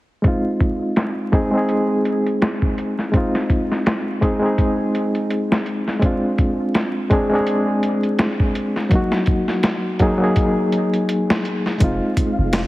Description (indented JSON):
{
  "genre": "trip hop",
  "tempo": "83 BPM",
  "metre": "4/4",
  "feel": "swing 57% on 16ths",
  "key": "F phrygian",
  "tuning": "A4 = 440 Hz",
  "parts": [
    { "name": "reed electric piano", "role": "accompaniment", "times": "0.2-12.7 s", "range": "Gb3 to Ab4", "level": "-19 LUFS", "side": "equal", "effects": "tremolo, vintage 12-bit sampler grit, low-pass filter, tape echo" },
    { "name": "dusty soul sampler-style drum kit", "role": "drums", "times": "0.2-12.7 s", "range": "hi-hat, kick drum, snare drum", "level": "-20 LUFS", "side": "equal", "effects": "overdrive, low-pass filter on hats, low-pass filter on kick, low-pass filter on snare" },
    { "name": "soft 808-style bass", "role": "bass", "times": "11.8-12.7 s", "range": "F1", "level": "-21 LUFS", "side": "equal", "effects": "none" },
    { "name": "flickering grainy texture", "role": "texture", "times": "12.1-12.7 s", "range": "Ab3 to F5", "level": "-29 LUFS", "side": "equal", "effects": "built-in reverb" }
  ],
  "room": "light reverb, digital ambience",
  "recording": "heavily compressed radio sound, vinyl crackle",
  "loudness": "-17 LUFS",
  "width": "side -18 dB against mid",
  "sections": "0.2-11.8 A section",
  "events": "none",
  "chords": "0.2 Fm7; 6.0 Fm6/Ab; 8.9 Ebm; 11.8 Fm7",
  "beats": "| 0.25 0.97 1.69 2.42 | 3.14 3.86 4.58 5.31 | 6.03 6.75 7.48 8.20 | 8.92 9.64 10.37 11.09 | 11.81 12.54"
}